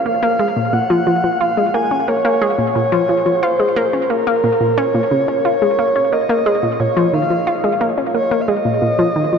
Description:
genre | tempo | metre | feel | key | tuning
ambient, sequencer-driven space music | 89 BPM | 4/4 | straight | Bb minor | A4 = 437 Hz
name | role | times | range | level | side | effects
breathy flute-like synth lead | melody | 0.1-9.4 s | Bb4 to Ab5 | -17 LUFS | equal | chorus, tape echo
analog pluck | riff | 0.1-9.4 s | Bb2 to F4 | -17 LUFS | equal | chorus, tape echo
room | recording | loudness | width
wet huge ambient reverb, RT60 9.2 s | in a vast, echoing space | -14 LUFS | side -6 dB against mid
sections
0.0-9.4 A section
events
none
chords
0.0 Bbm7

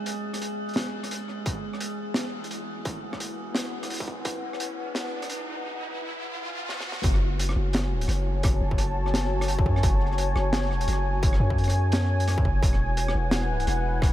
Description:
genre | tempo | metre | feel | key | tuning
half-time drum and bass | 172 BPM | 4/4 | swing 58% on 16ths, half-time | F# minor | A4 = 440 Hz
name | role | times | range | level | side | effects
dark analog pad | sustained chords | 0.0-14.1 s | E4 to A5 | -32 LUFS | left 1 dB | chorus, sidechain pumping
metallic inharmonic drone | texture | 0.0-5.7 s | G#3 to G#4 | -36 LUFS | right 1 dB | chorus, built-in reverb
crunchy breakbeat drum kit | drums | 0.1-14.1 s | hi-hat, rim click, snare drum | -32 LUFS | equal | none
electronic kick drum | drums | 1.5-4.3, 7.0-14.1 s | none | -25 LUFS | equal | distortion
riser | sound effects | 2.5-7.0 s | none | -38 LUFS | equal | none
long sustained 808-style bass | bass | 7.0-14.1 s | E1 to F#2 | -25 LUFS | equal | none
room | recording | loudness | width
light reverb | high-pass filter | -24 LUFS | side -14 dB against mid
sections
0.0-7.0 A section; 7.0-14.1 B section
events
build-up 0.0-7.0; filter sweep on analog synth pad 0.0-7.0; filter sweep 0.0-7.0; riser 2.5-7.0; drum fill 6.7-7.0; drop 7.0-14.1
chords
0.0 E; 7.0 F#m; 12.6 E

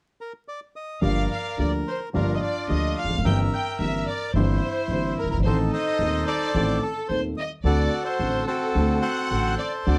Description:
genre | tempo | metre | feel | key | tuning
tango | 108 BPM | 4/4 | rubato | G harmonic minor | A4 = 439 Hz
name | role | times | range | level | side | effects
bandoneon | melody | 0.2-10.0 s | C4 to G5 | -30 LUFS | equal | none
dark upright piano | accompaniment | 1.0-10.0 s | Eb1 to A4 | -29 LUFS | equal | none
upright bass | bass | 1.0-10.0 s | E1 to Eb2 | -28 LUFS | equal | none
warm symphonic violin section | second line | 1.1-10.0 s | A4 to G5 | -33 LUFS | equal | none
room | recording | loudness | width
light reverb | close, detailed microphones, vinyl crackle | -24 LUFS | mono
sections
0.0-1.0 A section; 1.0-10.0 B section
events
none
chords
0.0 N.C.; 1.0 Gm7; 3.2 C7/G; 5.4 Adim; 7.6 D7

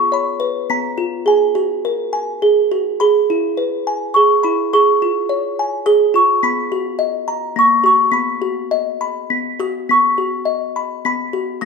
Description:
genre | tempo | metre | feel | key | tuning
children's music, lullaby | 105 BPM | 3/4 | straight | B major | A4 = 444 Hz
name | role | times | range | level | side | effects
music box | solo | 0.0-11.7 s | A#3 to D#6 | -14 LUFS | equal | none
room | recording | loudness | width
moderate recital hall reverb, RT60 1.6 s | dark, warm production | -14 LUFS | side -5 dB against mid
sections
0.0-9.9 A section; 9.9-11.7 B section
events
none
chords
0.0 C#7; 1.3 F#add9; 3.0 E; 4.7 C#; 6.4 B5; 7.0 F#6; 8.1 B

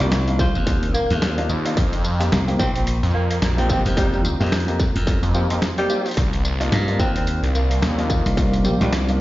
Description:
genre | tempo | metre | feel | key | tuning
glitch hop | 109 BPM | 4/4 | swing 58% on 16ths | C minor | A4 = 440 Hz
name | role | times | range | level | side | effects
mellow tenor saxophone | melody | 0.0-8.9 s | F3 to C4 | -26 LUFS | equal | digital delay
dark analog pad | sustained chords | 0.0-9.2 s | C4 to Bb5 | -31 LUFS | equal | chorus, sidechain pumping
warm baby grand piano | stabs | 0.0-9.2 s | Bb3 to G4 | -27 LUFS | left 1 dB | sidechain pumping, digital delay
glassy slap bass | bass | 0.0-9.2 s | Bb1 to G2 | -21 LUFS | equal | none
boom bap sampler-style drum kit | drums | 0.0-9.2 s | hi-hat, rim click, snare drum, tambourine | -27 LUFS | equal | none
electronic kick drum | drums | 0.4-8.5 s | none | -22 LUFS | equal | distortion
phased detuned saw bass | bass | 1.5-8.2 s | Bb1 to F2 | -21 LUFS | equal | phaser, tube saturation
room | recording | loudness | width
light reverb | played on a big sound system in a bare room, large studio reverb, nothing above 7.5 kHz | -18 LUFS | side -16 dB against mid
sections
0.0-9.2 A section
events
none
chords
0.0 Cm11; 1.8 F7sus4; 6.2 Cm11

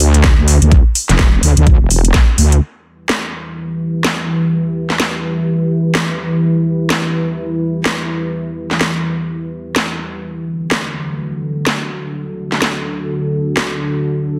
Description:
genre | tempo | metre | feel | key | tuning
bass house | 126 BPM | 4/4 | swing 59% on 16ths | E minor | A4 = 440 Hz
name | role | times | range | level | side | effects
wobble bass | bass | 0.0-2.6 s | E1 to D2 | -13 LUFS | equal | chorus, sidechain pumping
garage drum kit | drums | 0.0-13.7 s | hi-hat, snare drum | -20 LUFS | equal | none
electronic kick drum | drums | 0.2-2.3 s | none | -13 LUFS | equal | none
deep dark ambient pad | sustained chords | 3.5-14.4 s | D3 to B4 | -20 LUFS | equal | chorus, built-in reverb, sidechain pumping
room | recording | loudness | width
moderate digital room reverb, RT60 1.3 s | dense, heavily limited modern master | -16 LUFS | mono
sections
0.0-2.6 A section; 2.6-14.4 B section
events
none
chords
0.0 E7(no3); 2.6 Em; 10.2 D

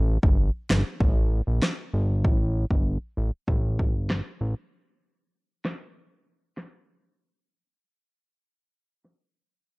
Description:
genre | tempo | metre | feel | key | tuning
dancehall | 97 BPM | 4/4 | straight | unclear | A4 = 440 Hz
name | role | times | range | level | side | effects
fat analog bass | bass | 0.0-4.5 s | G1 to Bb1 | -24 LUFS | equal | none
deep house drum kit | drums | 0.2-9.2 s | kick drum, rim click, snare drum | -24 LUFS | equal | none
room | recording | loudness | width
little or no reverb | dry, gritty hardware recording, low-pass filter | -23 LUFS | side -28 dB against mid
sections
0.0-9.7 A section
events
fade-out 0.0-9.7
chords
none

